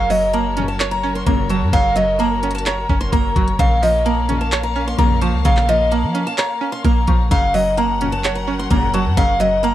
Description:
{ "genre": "hip hop, trap", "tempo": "129 BPM", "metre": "4/4", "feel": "half-time", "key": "unclear", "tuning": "A4 = 445 Hz", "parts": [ { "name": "picked steel-string acoustic guitar", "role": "melody", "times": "0.0-9.7 s", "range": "Eb5 to C6", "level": "-20 LUFS", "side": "left 1 dB", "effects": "none" }, { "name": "dark detuned synth bell", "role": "second line", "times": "0.0-9.7 s", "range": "A5 to Db6", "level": "-29 LUFS", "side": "left 9 dB", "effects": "chorus, cassette tape, analog delay" }, { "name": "string-like resonator pluck", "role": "accompaniment", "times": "0.0-9.7 s", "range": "Db3 to Db5", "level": "-22 LUFS", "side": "right 9 dB", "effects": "chorus, cassette tape" }, { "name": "clear studio string section", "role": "sustained chords", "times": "0.0-9.7 s", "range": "Gb3 to Gb5", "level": "-28 LUFS", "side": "left 1 dB", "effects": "cassette tape" }, { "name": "warm 808-style bass", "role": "bass", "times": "0.0-9.7 s", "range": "Gb1 to F3", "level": "-21 LUFS", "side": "equal", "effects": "none" }, { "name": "trap drum kit", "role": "drums", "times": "0.1-9.7 s", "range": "handclaps, hi-hat, kick drum", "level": "-19 LUFS", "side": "equal", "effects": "cassette tape" }, { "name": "dark symphonic string section", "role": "stabs", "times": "0.6-9.0 s", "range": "F2 to Db3", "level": "-26 LUFS", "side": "left 8 dB", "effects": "cassette tape" } ], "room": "digital ambience", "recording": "home recording on cassette", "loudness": "-15 LUFS", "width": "side -13 dB against mid", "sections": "0.0-9.7 A section", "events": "none", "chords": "0.0 Gb; 3.6 Bbm; 7.3 Gb", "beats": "0.34 0.80 1.27 | 1.73 2.20 2.66 3.13 | 3.59 4.06 4.52 4.99 | 5.45 5.92 6.38 6.85 | 7.31 7.78 8.24 8.71 | 9.17 9.64" }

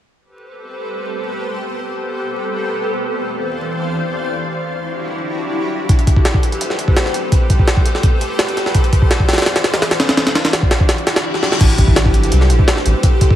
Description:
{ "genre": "drum and bass, jungle", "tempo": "168 BPM", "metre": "4/4", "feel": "straight", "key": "A minor", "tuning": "A4 = 436 Hz", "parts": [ { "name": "jungle sampler-style drum kit", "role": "drums", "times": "5.9-13.4 s", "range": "crash cymbal, hi-hat, kick drum, snare drum", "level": "-13 LUFS", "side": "equal", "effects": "none" }, { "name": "reverse cymbal", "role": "sound effects", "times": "11.1-11.6 s", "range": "none", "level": "-27 LUFS", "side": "left 6 dB", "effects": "none" }, { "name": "soft dub sub bass", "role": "bass", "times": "11.6-12.9 s", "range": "G1 to C2", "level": "-13 LUFS", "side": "equal", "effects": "none" } ], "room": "light reverb", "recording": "vinyl crackle", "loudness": "-14 LUFS", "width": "side -12 dB against mid", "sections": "0.2-11.6 A section; 11.6-13.4 B section", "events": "reverse cymbal 11.1-11.6; drum fill 11.3; drop 11.6-13.4", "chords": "none", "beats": "| 0.18 0.54 0.89 1.25 | 1.61 1.97 2.32 2.68 | 3.04 3.39 3.75 4.11 | 4.46 4.82 5.18 5.54 | 5.89 6.25 6.61 6.96 | 7.32 7.68 8.04 8.39 | 8.75 9.11 9.46 9.82 | 10.18 10.54 10.89 11.25 | 11.61 11.96 12.32 12.68 | 13.04" }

